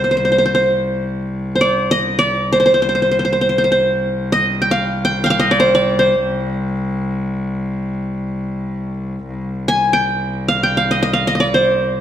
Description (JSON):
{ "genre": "Turkish makam ensemble", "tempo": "free time", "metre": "none", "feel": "none", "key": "C makam ussak", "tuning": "A4 = 440 Hz", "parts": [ { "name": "qanun", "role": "melody", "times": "0.0-12.0 s", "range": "Bb4 to Ab5", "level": "-14 LUFS", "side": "equal", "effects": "none" }, { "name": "clear cello", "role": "drone", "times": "0.0-12.0 s", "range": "C2", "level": "-22 LUFS", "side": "left 1 dB", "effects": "none" } ], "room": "wet recital hall reverb, RT60 1.6 s", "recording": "none", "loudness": "-15 LUFS", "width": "side -10 dB against mid", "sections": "0.0-9.3 A section; 9.3-12.0 A section", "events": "none", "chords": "none", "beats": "free time" }